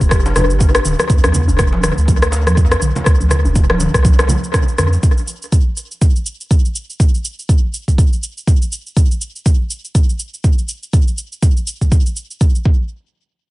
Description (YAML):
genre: afro house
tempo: 122 BPM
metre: 4/4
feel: swing 58% on 16ths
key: unclear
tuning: A4 = 440 Hz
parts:
  - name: mellow synth brass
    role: stabs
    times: 0.0-1.1 s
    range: D4 to B4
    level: -23 LUFS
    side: left 4 dB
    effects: chorus, phaser, sidechain pumping, tape echo
  - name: warm sub bass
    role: bass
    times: 0.0-5.0 s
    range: D1 to F2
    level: -16 LUFS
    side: equal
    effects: sidechain pumping
  - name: afro-pop drum kit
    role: drums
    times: 0.0-12.6 s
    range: rim click, shaker, toms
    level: -20 LUFS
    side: equal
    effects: tape echo
  - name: electronic kick drum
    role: drums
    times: 0.0-12.8 s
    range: none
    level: -12 LUFS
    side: equal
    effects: none
  - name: congas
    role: percussion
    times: 0.1-5.0 s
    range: none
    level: -23 LUFS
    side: right 2 dB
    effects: tape echo
  - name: djembe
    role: percussion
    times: 0.3-4.9 s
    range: none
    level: -24 LUFS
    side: left 1 dB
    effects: tape echo
room: light reverb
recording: echo-heavy mix, nothing above 11.0 kHz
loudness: -13 LUFS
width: side -19 dB against mid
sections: 0.0-12.9 A section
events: none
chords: 0.0 G; 1.1 E5; 3.1 D7(no3); 5.0 N.C.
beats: 0.11 0.60 | 1.09 1.59 2.08 2.57 | 3.06 3.55 4.05 4.54 | 5.03 5.52 6.01 6.50 | 7.00 7.49 7.98 8.47 | 8.96 9.46 9.95 10.44 | 10.93 11.42 11.91 12.41